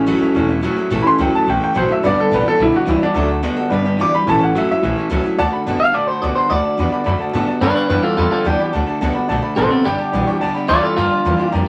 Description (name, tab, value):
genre	rockabilly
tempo	215 BPM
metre	4/4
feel	straight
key	D major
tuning	A4 = 441 Hz
part	clear upright piano	accompaniment	0.0-11.6 s	E3 to D6	-21 LUFS	equal	none
part	picked steel-string acoustic guitar	accompaniment	0.0-11.7 s	G2 to B4	-26 LUFS	equal	none
part	electric guitar through a small old amp	riff	0.0-11.7 s	G2 to B3	-24 LUFS	equal	none
part	upright bass	bass	0.0-11.7 s	E1 to A2	-25 LUFS	equal	none
part	electric guitar through a small old amp	melody	5.8-11.5 s	C4 to F5	-19 LUFS	equal	none
room	moderate studio reverb, RT60 0.6 s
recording	vinyl crackle, faint mains hum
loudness	-17 LUFS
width	mono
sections	0.0-5.4 A section; 5.4-11.7 B section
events	upright piano solo 0.0-5.4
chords	0.0 A; 2.0 G; 3.2 D; 3.7 G; 4.3 A; 5.4 D; 7.6 G; 8.7 D; 9.9 G; 11.0 Gm7